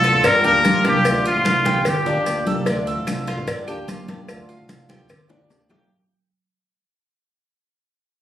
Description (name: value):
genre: latin, Cuban son and guajira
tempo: 148 BPM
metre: 4/4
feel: straight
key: unclear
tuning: A4 = 441 Hz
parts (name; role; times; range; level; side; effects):
- trumpet with straight mute; melody; 0.0-2.5 s; F4 to Bb4; -17 LUFS; left 1 dB; none
- flamenco guitar; accompaniment; 0.0-5.9 s; D3 to G4; -26 LUFS; left 1 dB; none
- Cuban tres; arpeggios; 0.0-5.9 s; D4 to D5; -27 LUFS; right 2 dB; none
- upright bass; bass; 0.0-5.9 s; G1 to D2; -27 LUFS; equal; none
- cowbell and bongos; percussion; 0.0-5.8 s; none; -25 LUFS; left 1 dB; none
- maracas; percussion; 0.0-5.9 s; none; -39 LUFS; right 3 dB; none
- congas; percussion; 0.2-5.9 s; none; -25 LUFS; equal; none
- claves; percussion; 3.1-5.9 s; none; -38 LUFS; equal; none
room: moderate studio ambience, RT60 0.4 s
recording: recorded on a phone in the room, studio reverb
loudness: -16 LUFS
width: side -12 dB against mid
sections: 0.0-5.9 A section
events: fade-out 0.0-5.9; drum fill 5.3-5.9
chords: 0.2 Gm7; 1.1 Dm7; 1.9 Gm7; 2.7 Dm7; 3.5 Gm7; 4.3 Dm7; 5.1 Gm7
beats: 0.24 0.65 | 1.05 1.46 1.86 2.27 | 2.67 3.08 3.48 3.88 | 4.29 4.69 5.10 5.50